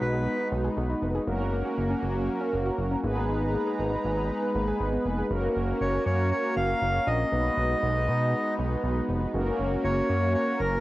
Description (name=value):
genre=synth-pop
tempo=119 BPM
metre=4/4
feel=straight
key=F# major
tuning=A4 = 440 Hz
part: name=accordion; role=melody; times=0.0-0.5, 5.8-10.8 s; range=A#4 to E#5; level=-28 LUFS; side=equal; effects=cassette tape, plate reverb, analog delay
part: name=mellow synth brass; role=accompaniment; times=0.0-10.8 s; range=A#3 to B4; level=-30 LUFS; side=equal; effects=chorus, phaser, cassette tape, plate reverb
part: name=lush unison pad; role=sustained chords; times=0.0-10.8 s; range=G#3 to A#5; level=-32 LUFS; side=equal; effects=chorus, cassette tape, plate reverb
part: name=soft round pluck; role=arpeggios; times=0.0-5.3 s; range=F#3 to G#4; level=-35 LUFS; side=left 1 dB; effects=chorus, cassette tape, plate reverb, analog delay
part: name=chorused synth bass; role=bass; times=0.0-10.8 s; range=E#1 to B2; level=-28 LUFS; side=equal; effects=none
room=moderate studio reverb, RT60 0.6 s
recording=home recording on cassette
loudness=-24 LUFS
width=side -17 dB against mid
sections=0.0-5.3 A section; 5.3-10.8 B section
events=none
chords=0.0 B6; 1.3 F#; 3.0 G#madd9; 5.3 F#; 7.3 B6; 9.3 F#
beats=0.26 0.77 | 1.27 1.77 2.28 2.78 | 3.29 3.79 4.30 4.80 | 5.30 5.81 6.31 6.82 | 7.32 7.83 8.33 8.83 | 9.34 9.84 10.35